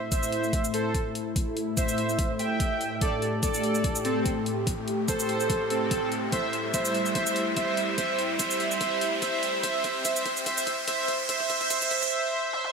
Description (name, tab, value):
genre	heavy wobble dubstep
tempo	145 BPM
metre	4/4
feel	swing 54% on 16ths, half-time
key	A minor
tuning	A4 = 440 Hz
part	lush unison pad	sustained chords	0.0-12.1 s	A2 to G4	-32 LUFS	left 1 dB	chorus, vintage 12-bit sampler grit, sidechain pumping
part	riser	sound effects	0.6-12.1 s	none	-34 LUFS	right 1 dB	none
part	soft supersaw	melody	0.1-12.7 s	C4 to G5	-27 LUFS	right 2 dB	cassette tape, tape echo
part	dubstep drum kit	drums	0.1-12.7 s	hi-hat, shaker, toms	-33 LUFS	left 1 dB	overdrive, high-pass filter on hats, studio reverb, high-pass filter on perc, high-pass filter on snare, high-pass filter on toms
part	electronic kick drum	drums	0.1-12.1 s	none	-30 LUFS	equal	overdrive, studio reverb
room	moderate lush hall reverb, RT60 1.8 s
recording	high-pass filter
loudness	-24 LUFS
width	side -5 dB against mid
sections	0.0-12.7 A section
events	build-up 0.0-12.7; filter sweep 0.0-12.7; riser 0.6-12.1; drum fill 6.3-12.1, 12.5; break 12.1-12.7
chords	0.0 A5